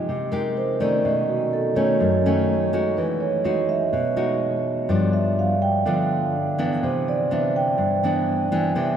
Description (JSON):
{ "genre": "bossa nova", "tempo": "124 BPM", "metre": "4/4", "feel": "straight", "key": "unclear", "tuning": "A4 = 441 Hz", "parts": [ { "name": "nylon-string guitar", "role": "accompaniment", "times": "0.0-9.0 s", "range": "F#2 to G4", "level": "-23 LUFS", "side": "left 2 dB", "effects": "none" }, { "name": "vibraphone with soft mallets", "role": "accompaniment", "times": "0.0-9.0 s", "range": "F#4 to G5", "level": "-22 LUFS", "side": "right 3 dB", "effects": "none" } ], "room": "wet cathedral reverb, RT60 5.8 s", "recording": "in a vast, echoing space", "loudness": "-19 LUFS", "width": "side -8 dB against mid", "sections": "0.0-9.0 A section", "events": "vibraphone solo 0.0-9.0", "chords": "0.0 Fm9 (rootless); 1.0 B9; 3.0 Emaj9; 4.9 G7; 6.8 Cmaj9" }